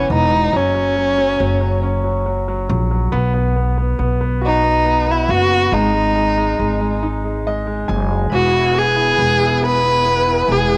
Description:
six-eight pop ballad; 46 BPM (dotted quarters); 6/8; straight; B major; A4 = 440 Hz
warm violin; melody; 0.0-10.8 s; C#4 to B4; -18 LUFS; equal
clear concert grand piano; accompaniment; 0.0-10.8 s; E3 to G#5; -25 LUFS; equal; cassette tape
upright bass; bass; 0.0-10.8 s; E1 to B1; -22 LUFS; equal
percussive tonewheel organ; sustained chords; 8.3-10.8 s; E4 to G#5; -30 LUFS; equal; overdrive, chorus vibrato, slow rotary speaker, cassette tape
light reverb, small room ambience; home recording on cassette; -17 LUFS; mono
0.0-10.8 A section
grand piano fill 7.0-8.3
0.0 E5; 0.5 F#; 3.1 B5; 5.7 G#5; 8.3 E

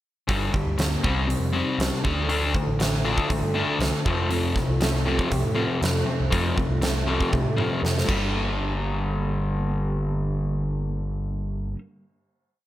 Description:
quiet-loud alternative rock; 119 BPM; 4/4; straight; G minor; A4 = 440 Hz
electric guitar through a small old amp; arpeggios; 0.3-11.8 s; G2 to G4; -32 LUFS; right 4 dB; ensemble chorus
overdriven semi-hollow guitar; riff; 0.3-11.8 s; F2 to D4; -25 LUFS; left 2 dB
overdriven picked electric bass; bass; 0.3-11.7 s; G1 to A2; -28 LUFS; right 1 dB
huge arena drum kit; drums; 0.3-8.2 s; crash cymbal, hi-hat, kick drum, snare drum, toms; -28 LUFS; right 1 dB
light reverb, studio ambience; -22 LUFS; side -14 dB against mid
0.3-8.3 verse; 8.3-12.3 final hit
drum fill 7.3-8.3
0.3 Gm; 1.0 Cm; 2.0 Dm; 4.1 Fadd9; 8.1 Gm

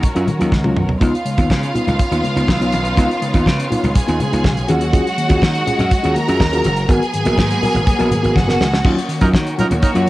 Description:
disco; 122 BPM; 4/4; straight; A4 = 440 Hz
clear studio string section; sustained chords; 0.0-10.1 s; Eb3 to Bb4; -24 LUFS; equal; cassette tape
damped 70s drum kit; drums; 0.0-10.1 s; crash cymbal, hi-hat, kick drum, snare drum, toms; -18 LUFS; equal; cassette tape
congas; percussion; 0.0-10.1 s; -24 LUFS; left 1 dB
mellow tine electric piano; accompaniment; 0.1-10.1 s; Ab2 to Bb4; -19 LUFS; left 1 dB; medium stereo tremolo, cassette tape
slap bass; bass; 0.2-10.1 s; Gb1 to Eb3; -20 LUFS; equal
bright symphonic violin section; second line; 1.0-10.1 s; Bb3 to Bb5; -22 LUFS; right 1 dB; cassette tape
warm horn section; stabs; 9.2-9.9 s; Gb3 to Bb4; -22 LUFS; right 3 dB; cassette tape
light reverb, small room ambience; home recording on cassette; -14 LUFS; side -17 dB against mid
0.0-1.0 A section; 1.0-8.8 B section; 8.8-10.1 C section
drum fill 0.5-1.0, 8.4-8.8
0.0 Ebm7; 1.0 Db9; 4.7 Ebm11; 6.9 Abm9; 8.8 Ebm7

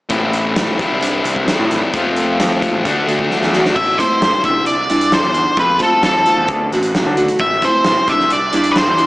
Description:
quiet-loud alternative rock; 132 BPM; 4/4; straight; A minor; A4 = 440 Hz
picked acoustic archtop guitar; arpeggios; 0.1-9.1 s; A2 to F#4; -21 LUFS; right 1 dB; digital delay
fuzz guitar; riff; 0.1-3.8 s; A2 to F#4; -17 LUFS; left 2 dB; distortion
fuzz picked electric bass; bass; 0.1-9.1 s; A1 to D3; -22 LUFS; equal; overdrive
big rock drum kit; drums; 0.1-9.1 s; crash cymbal, hi-hat, kick drum, snare drum; -20 LUFS; equal
octave-fuzz lead guitar; melody; 3.8-9.1 s; A4 to E5; -14 LUFS; equal; distortion, digital delay
wet lush hall reverb, RT60 1.7 s, small room ambience; big arena sound, small speaker sound; -13 LUFS; side -18 dB against mid
0.1-3.8 A section; 3.8-9.1 B section
drum fill 3.3-3.8
0.1 Am; 0.8 Cadd9; 1.9 F; 2.8 D; 3.8 Am; 4.4 Cadd9; 5.6 F; 6.5 D; 7.4 Am; 8.1 Cadd9

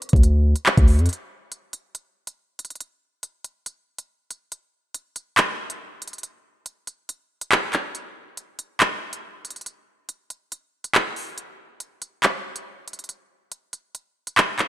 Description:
hip hop, drill; 140 BPM; 4/4; half-time; A4 = 442 Hz
drill drum kit; drums; 0.0-14.7 s; handclaps, hi-hat, kick drum; -20 LUFS; equal
long sustained 808-style bass; bass; 0.1-1.1 s; D2 to F2; -16 LUFS; equal
light reverb; -19 LUFS; side -14 dB against mid
0.0-1.1 A section; 1.1-7.9 B section; 7.9-14.7 C section
kick muted 7.1-7.9, 7.9-14.7

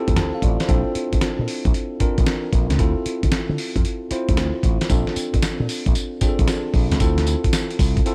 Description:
R&B, new jack swing; 114 BPM; 4/4; swing 67% on 16ths; D minor; A4 = 442 Hz
bell-like tine electric piano; accompaniment; 0.0-8.1 s; C4 to A5; -27 LUFS; equal
slap bass with an envelope filter; bass; 0.1-8.0 s; A1 to D3; -24 LUFS; equal
dusty soul sampler-style drum kit; drums; 0.1-8.1 s; hi-hat, kick drum, snare drum, tambourine; -23 LUFS; equal
digital ambience; -21 LUFS; mono
0.0-7.0 A section; 7.0-8.1 B section
0.0 Dm7; 0.7 Bbmaj7; 2.8 Dm7; 4.9 Bbmaj7; 7.0 Dm7

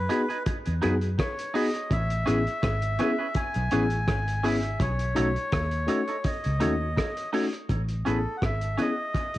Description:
lovers rock reggae; 83 BPM; 4/4; swing 54% on 16ths; A4 = 440 Hz
melodica; melody; 0.0-9.4 s; A4 to G#5; -31 LUFS; equal; cassette tape, tape echo, plate reverb
vintage muted fingered electric bass; bass; 0.0-9.4 s; G#1 to F#2; -28 LUFS; equal
mellow tine electric piano; accompaniment; 0.1-9.4 s; A3 to G#4; -29 LUFS; left 2 dB; cassette tape, plate reverb
semi-hollow electric guitar; stabs; 0.1-8.9 s; C#4 to C#5; -33 LUFS; right 4 dB; cassette tape, analog delay, plate reverb
cloth-damped thuddy drum kit; drums; 0.1-9.4 s; hi-hat, kick drum, rim click; -30 LUFS; equal; cassette tape
light reverb; home recording on cassette; -24 LUFS; side -15 dB against mid
0.0-7.7 A section; 7.7-9.4 B section
0.0 Emaj7 (rootless); 1.9 Amaj9; 4.8 B9; 7.7 Amaj9

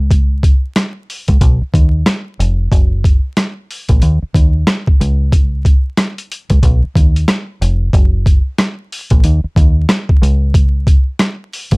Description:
hip hop, boom-bap hip-hop; 92 BPM; 4/4; swing 61% on 16ths; A4 = 437 Hz
deep dub fingered electric bass; bass; 0.0-11.8 s; E#1 to D#2; -14 LUFS; equal
boom bap sampler-style drum kit; drums; 0.1-11.8 s; hi-hat, kick drum, rim click, snare drum; -11 LUFS; equal
little or no reverb; vinyl crackle; -11 LUFS; side -35 dB against mid
0.0-7.9 A section; 7.9-11.8 B section

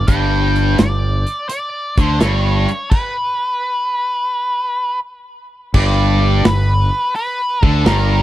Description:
blues rock power trio and southern rock; 85 BPM; 4/4; swing 67% on 8ths; G major; A4 = 439 Hz
octave-fuzz lead guitar; melody; 0.0-8.2 s; Bb4 to G5; -20 LUFS; equal; distortion
tight distorted guitar; riff; 0.0-8.2 s; G2 to D3; -18 LUFS; equal; distortion
growling fingered electric bass; bass; 0.0-8.2 s; G1 to D2; -16 LUFS; equal; overdrive
big rock drum kit; drums; 0.1-8.1 s; crash cymbal, hi-hat, kick drum, snare drum; -15 LUFS; equal
little or no reverb; dry, close 1970s-style studio recording; -14 LUFS; side -14 dB against mid
0.0-5.7 A section; 5.7-8.2 A section
stop 2.9-5.7
0.0 G

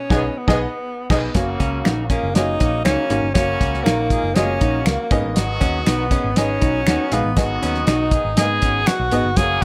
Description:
uptempo 1960s-style soul; 120 BPM; 4/4; straight; A4 = 438 Hz
breathy tenor saxophone; melody; 0.0-9.6 s; A#3 to G#4; -24 LUFS; equal
clear horn section; second line; 0.1-9.6 s; C#3 to G#4; -30 LUFS; equal
clear upright piano; accompaniment; 0.1-9.6 s; G#2 to E#5; -27 LUFS; equal
vintage muted picked electric bass; bass; 0.1-9.6 s; F#1 to G#2; -27 LUFS; equal
cloth-damped thuddy drum kit; drums; 0.1-9.6 s; crash cymbal, hi-hat, kick drum, snare drum; -22 LUFS; equal
archtop guitar, miked and amplified; riff; 1.6-9.3 s; B3 to D#4; -28 LUFS; equal
finger snap; percussion; 1.9-9.0 s; -31 LUFS; equal
light reverb, studio ambience; faint mains hum; -19 LUFS; mono
0.0-1.4 A section; 1.4-9.6 B section
band accent 0.0-1.4; tenor saxophone solo 1.4-9.6
0.0 G#m/B; 1.4 F#; 5.1 G#m

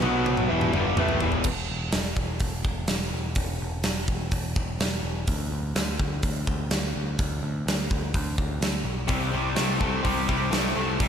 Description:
classic rock; 126 BPM; 4/4; straight; A4 = 438 Hz
clear upright piano; accompaniment; 0.0-1.4 s; F#4 to F#5; -31 LUFS; right 4 dB; plate reverb
tonewheel organ; sustained chords; 0.0-1.4, 9.1-11.1 s; G3 to C5; -37 LUFS; right 1 dB
crunchy overdriven guitar; riff; 0.0-1.5, 9.1-11.1 s; E2 to B3; -28 LUFS; left 13 dB
crunchy overdriven guitar; riff; 0.0-1.5 s; E2 to B3; -30 LUFS; right 1 dB
tight distorted guitar; riff; 0.0-1.4, 9.1-11.1 s; E2 to B3; -29 LUFS; right 12 dB; distortion
growling picked electric bass; bass; 0.0-11.1 s; E1 to D2; -30 LUFS; equal; overdrive
big rock drum kit; drums; 0.0-11.1 s; crash cymbal, hi-hat, kick drum, snare drum, toms; -27 LUFS; equal
moderate large studio reverb, RT60 0.8 s, small room ambience; -24 LUFS; side -8 dB against mid
0.0-1.5 A section; 1.5-11.1 B section
drum fill 0.0-1.5
0.0 B5; 0.5 Em; 1.5 N.C.; 9.1 C

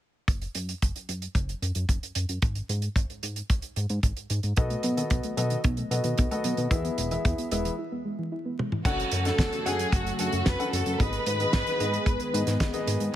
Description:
italo disco; 112 BPM; 4/4; straight; F# dorian; A4 = 440 Hz
chorused synth bass; bass; 0.3-13.1 s; E1 to B2; -30 LUFS; equal
damped 70s drum kit; drums; 0.3-13.1 s; crash cymbal, hi-hat, snare drum, toms; -32 LUFS; right 2 dB; gated reverb
kick drum; drums; 0.3-12.7 s; -25 LUFS; equal
soft round pluck; arpeggios; 4.6-8.8 s; D#3 to E4; -34 LUFS; right 1 dB; chorus, digital delay
dark grand piano; stabs; 4.6-13.1 s; B3 to F#5; -32 LUFS; left 3 dB; digital delay
warm studio violin section; melody; 8.9-12.6 s; F#4 to B4; -30 LUFS; equal; digital delay
warm analog pad; sustained chords; 8.9-13.2 s; C#3 to B4; -33 LUFS; equal; chorus
light reverb, small room reverb; vinyl crackle; -25 LUFS; side -12 dB against mid
0.3-8.9 A section; 8.9-13.2 B section
break 7.8-8.9; drum fill 8.6
0.3 N.C.; 4.6 B7; 6.7 E; 8.9 F#m; 11.0 G#m

